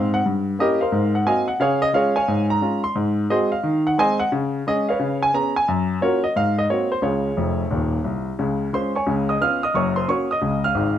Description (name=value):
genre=jazz, stride piano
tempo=177 BPM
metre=4/4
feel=swing 64% on 8ths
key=Db major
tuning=A4 = 439 Hz
part: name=clear grand piano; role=solo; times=0.0-11.0 s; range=Eb1 to F6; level=-18 LUFS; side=equal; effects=none
room=moderate club reverb, RT60 0.8 s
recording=none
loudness=-18 LUFS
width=side -10 dB against mid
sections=0.0-8.4 A section; 8.4-11.0 A section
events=grand piano fill 7.4-8.4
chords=0.2 Gdim7; 0.9 Ab13; 1.6 Db; 3.0 Ab7; 3.6 Ab/Eb; 4.3 Db5; 5.7 Gbmaj7; 6.4 Ab9; 7.0 Db; 9.1 Db7; 9.7 Gb